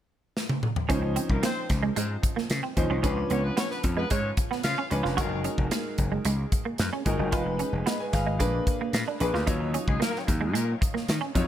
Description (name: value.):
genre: polished 1980s jazz-funk pop.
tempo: 112 BPM.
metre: 4/4.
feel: straight.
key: Db major.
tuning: A4 = 437 Hz.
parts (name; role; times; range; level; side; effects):
modern studio drum kit; drums; 0.4-11.5 s; hi-hat, kick drum, snare drum, toms; -29 LUFS; equal; none.
clear concert grand piano; accompaniment; 0.9-11.5 s; F3 to Cb6; -32 LUFS; left 1 dB; lush chorus.
semi-hollow electric guitar; riff; 0.9-11.4 s; Ab3 to Gb4; -32 LUFS; right 6 dB; ensemble chorus.
gritty slap bass; bass; 0.9-11.4 s; F1 to Eb3; -28 LUFS; equal; overdrive.
mellow horn section; second line; 1.3-4.9, 9.9-10.2 s; Ab3 to F5; -35 LUFS; left 2 dB; ping-pong delay.
room: small room ambience.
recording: none.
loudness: -24 LUFS.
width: side -11 dB against mid.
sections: 0.9-11.5 A section.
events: drum fill 0.4-0.9.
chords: 0.0 N.C.; 0.9 Dbmaj9; 3.0 Db7b9; 5.2 Gb69; 7.3 Fm7b5; 8.4 Bb7b9; 9.5 Ebm9.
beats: 0.35 | 0.89 1.43 1.96 2.50 | 3.04 3.57 4.11 4.64 | 5.18 5.72 6.25 6.79 | 7.33 7.87 8.40 8.94 | 9.47 10.01 10.55 11.09.